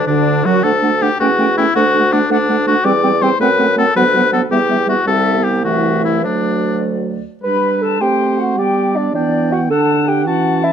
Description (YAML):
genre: quick classical-period movement for wind quintet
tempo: 107 BPM (dotted quarters)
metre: 6/8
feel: rubato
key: unclear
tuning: A4 = 442 Hz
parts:
  - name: bright concert flute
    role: melody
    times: 0.0-10.7 s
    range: D4 to B5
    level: -23 LUFS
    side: left 12 dB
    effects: none
  - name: clear oboe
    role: second line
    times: 0.0-10.7 s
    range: D4 to A5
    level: -17 LUFS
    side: left 4 dB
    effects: none
  - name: mellow bassoon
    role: bass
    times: 0.0-10.7 s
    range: C2 to B4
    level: -18 LUFS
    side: right 2 dB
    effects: none
  - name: mellow French horn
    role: accompaniment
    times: 0.1-10.7 s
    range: D3 to A3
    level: -21 LUFS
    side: equal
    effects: none
  - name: warm clarinet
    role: accompaniment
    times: 0.1-10.7 s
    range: D3 to D4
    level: -20 LUFS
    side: right 7 dB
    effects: none
room: light reverb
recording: dark, warm production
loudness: -12 LUFS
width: side -8 dB against mid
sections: 0.0-7.4 A section; 7.4-10.7 A section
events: none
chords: 0.0 N.C.; 0.6 D; 1.2 A7/E; 1.7 D; 2.8 C/E; 3.4 F#dim; 4.0 Bm/D; 4.5 Em; 5.1 C; 5.6 Am/C; 6.2 D; 7.4 G; 8.0 Am7; 8.6 G; 9.7 D